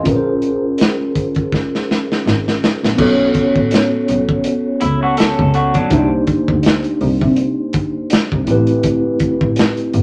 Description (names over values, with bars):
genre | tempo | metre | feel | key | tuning
R&B, neo-soul | 82 BPM | 4/4 | swing 56% on 16ths | unclear | A4 = 440 Hz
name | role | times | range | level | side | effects
mellow tine electric piano | accompaniment | 0.0-10.0 s | A3 to C#5 | -19 LUFS | equal | none
rich double bass | bass | 0.1-10.0 s | G1 to C3 | -21 LUFS | equal | none
crunchy breakbeat drum kit | drums | 0.1-10.0 s | crash cymbal, hi-hat, kick drum, snare drum | -19 LUFS | equal | none
electric guitar through a small old amp | second line | 4.8-6.1 s | F#3 to A4 | -20 LUFS | equal | none
room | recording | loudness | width
moderate club reverb, RT60 0.6 s | none | -16 LUFS | mono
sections
0.1-3.0 A section; 3.0-10.0 B section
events
drum fill 1.5-3.0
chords
0.1 A#m9; 3.0 Bsus2; 5.9 Cm9; 8.5 Am9